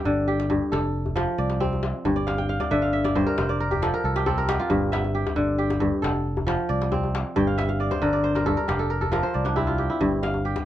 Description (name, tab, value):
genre	west african traditional, West African string and xylophone music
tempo	90 BPM (dotted quarters)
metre	12/8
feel	straight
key	G dorian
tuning	A4 = 441 Hz
part	kora	arpeggios	0.0-10.7 s	G2 to G5	-23 LUFS	equal	none
part	fingered electric bass	bass	0.1-10.5 s	F1 to C2	-28 LUFS	right 1 dB	none
part	djembe	percussion	0.4-10.7 s	none	-31 LUFS	left 4 dB	none
room	light reverb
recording	worn, warbling old tape, cassette tape, warbly pitch drift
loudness	-22 LUFS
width	side -12 dB against mid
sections	0.0-10.0 A section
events	kora fill 2.2-4.7, 7.4-10.0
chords	0.0 G5; 0.7 F; 2.1 G5; 3.4 F5; 4.7 G5; 6.0 F; 7.4 G5; 8.7 F5; 10.0 Gm